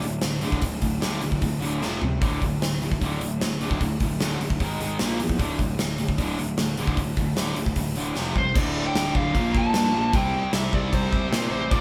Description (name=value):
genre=hard rock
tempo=152 BPM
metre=4/4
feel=straight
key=D minor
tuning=A4 = 440 Hz
part: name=cranked stack guitar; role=riff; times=0.0-11.8 s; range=D2 to C4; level=-33 LUFS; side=equal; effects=overdrive
part: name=tight distorted guitar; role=riff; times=0.0-11.8 s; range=D2 to C4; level=-33 LUFS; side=equal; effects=distortion
part: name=fuzz picked electric bass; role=bass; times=0.0-11.8 s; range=D1 to Bb2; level=-32 LUFS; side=equal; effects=overdrive
part: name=gated 80s drum kit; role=drums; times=0.0-11.8 s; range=crash cymbal, hi-hat, kick drum, snare drum, toms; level=-28 LUFS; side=equal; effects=none
part: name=lead guitar through a small cranked amp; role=melody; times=8.4-11.8 s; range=C5 to A5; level=-29 LUFS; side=equal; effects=overdrive
room=moderate studio reverb, RT60 0.7 s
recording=band playing live in one room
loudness=-25 LUFS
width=mono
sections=0.0-8.6 A section; 8.6-11.8 B section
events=drum fill 1.8-2.2, 8.2-8.6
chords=0.0 D5; 1.8 F5; 2.2 D5; 4.6 G#5; 5.0 Bb5; 5.4 D5; 8.2 F5; 8.6 D5; 9.3 Bb5; 10.1 C5